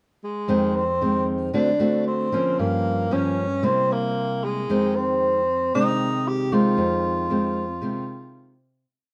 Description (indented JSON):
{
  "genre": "bossa nova",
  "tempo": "114 BPM",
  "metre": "4/4",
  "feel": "straight",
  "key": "F minor",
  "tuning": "A4 = 440 Hz",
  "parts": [
    { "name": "breathy tenor saxophone", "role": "melody", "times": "0.2-8.6 s", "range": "Ab3 to G4", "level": "-26 LUFS", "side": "equal", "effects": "none" },
    { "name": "nylon-string guitar", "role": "accompaniment", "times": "0.5-8.8 s", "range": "F2 to F#4", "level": "-25 LUFS", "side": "equal", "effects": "none" }
  ],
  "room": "wet echo chamber reverb, RT60 1.7 s",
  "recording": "dark, warm production",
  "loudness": "-23 LUFS",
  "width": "mono",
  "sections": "0.0-0.5 pickup bar; 0.5-8.9 A section",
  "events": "fade-out 6.8-8.9",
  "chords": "0.5 Fm7; 1.5 D7; 2.6 Gm7b5; 3.6 C7; 4.7 Fm7"
}